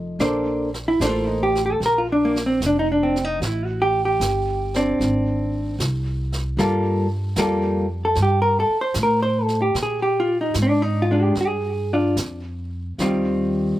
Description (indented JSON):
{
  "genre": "jazz",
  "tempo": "75 BPM",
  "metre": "4/4",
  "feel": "swing 68% on 8ths",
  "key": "Bb major",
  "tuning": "A4 = 440 Hz",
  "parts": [
    { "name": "vintage hollow-body jazz guitar", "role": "accompaniment", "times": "0.0-13.8 s", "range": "Eb3 to C5", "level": "-20 LUFS", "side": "equal", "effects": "slapback echo" },
    { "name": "upright bass", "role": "bass", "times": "0.0-13.8 s", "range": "F1 to Bb2", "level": "-25 LUFS", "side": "equal", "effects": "none" },
    { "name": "jazz brush drum kit", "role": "drums", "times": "0.2-13.8 s", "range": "brushed snare drum, hi-hat, snare drum", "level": "-32 LUFS", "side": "right 1 dB", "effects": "slapback echo" }
  ],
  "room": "little or no reverb",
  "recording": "recorded outdoors, with no room sound",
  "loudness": "-18 LUFS",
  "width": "side -14 dB against mid",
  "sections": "0.2-13.8 A section",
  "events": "none",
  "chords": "0.2 Bbmaj9; 3.4 Am7; 5.0 Ab; 6.6 Gm9; 9.8 Bb7; 13.0 Eb69"
}